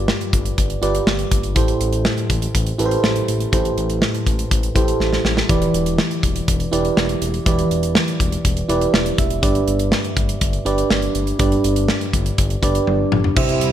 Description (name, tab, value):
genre	1980s-style pop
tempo	122 BPM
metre	4/4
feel	straight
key	unclear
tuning	A4 = 439 Hz
part	mellow FM electric piano	accompaniment	0.0-13.7 s	G2 to E5	-20 LUFS	right 2 dB	chorus
part	smooth gliding synth bass	bass	0.0-13.7 s	E1 to C2	-24 LUFS	left 1 dB	none
part	modern studio drum kit	drums	0.1-13.7 s	crash cymbal, hi-hat, kick drum, snare drum, toms	-20 LUFS	equal	none
part	lush unison pad	sustained chords	13.4-13.7 s	C3 to E4	-24 LUFS	right 2 dB	chorus
room	moderate plate reverb, RT60 1.9 s, small room reverb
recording	bright 1980s-style digital production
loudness	-16 LUFS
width	side -10 dB against mid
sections	0.0-13.4 A section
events	drum fill 5.0-5.5, 12.9-13.4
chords	0.0 G7; 1.6 Am7; 5.5 Em7; 9.4 G